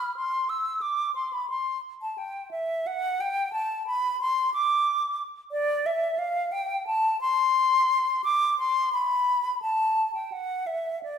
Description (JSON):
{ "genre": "classical, baroque-style fantasia for unaccompanied flute", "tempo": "89 BPM", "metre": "4/4", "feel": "rubato", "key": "C major", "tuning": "A4 = 440 Hz", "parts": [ { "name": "mellow silver concert flute", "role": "solo", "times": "0.0-11.2 s", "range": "D5 to E6", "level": "-24 LUFS", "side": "left 1 dB", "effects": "none" } ], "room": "wet stone room reverb, RT60 1.4 s", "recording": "heard from further back in the room", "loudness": "-24 LUFS", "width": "side -8 dB against mid", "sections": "0.0-11.2 A section", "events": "none", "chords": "none" }